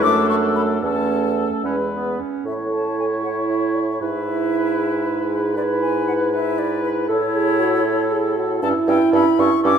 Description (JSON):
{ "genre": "quick classical-period movement for wind quintet", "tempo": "78 BPM (dotted quarters)", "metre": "6/8", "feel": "rubato", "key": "A major", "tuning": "A4 = 440 Hz", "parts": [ { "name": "mellow silver concert flute", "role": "melody", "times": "0.0-9.8 s", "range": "B4 to D6", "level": "-25 LUFS", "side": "left 8 dB", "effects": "none" }, { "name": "warm oboe", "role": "second line", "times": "0.0-9.7 s", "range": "A4 to C#5", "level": "-26 LUFS", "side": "left 3 dB", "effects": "none" }, { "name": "dark French horn", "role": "accompaniment", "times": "0.0-9.8 s", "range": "G#3 to B4", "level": "-22 LUFS", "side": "right 2 dB", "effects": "none" }, { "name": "warm clarinet", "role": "accompaniment", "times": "0.0-9.8 s", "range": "B3 to E4", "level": "-24 LUFS", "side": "right 8 dB", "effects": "none" }, { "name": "warm bassoon", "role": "bass", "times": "0.0-9.8 s", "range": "E2 to A2", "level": "-23 LUFS", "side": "right 2 dB", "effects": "none" } ], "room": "wet concert hall reverb, RT60 2.2 s", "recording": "none", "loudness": "-17 LUFS", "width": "side -7 dB against mid", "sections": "0.0-2.5 A section; 2.5-9.8 B section", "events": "none", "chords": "0.0 D/F#; 0.8 A/E; 1.6 E; 2.5 A; 4.0 E/G#; 7.1 A; 8.6 A7/G" }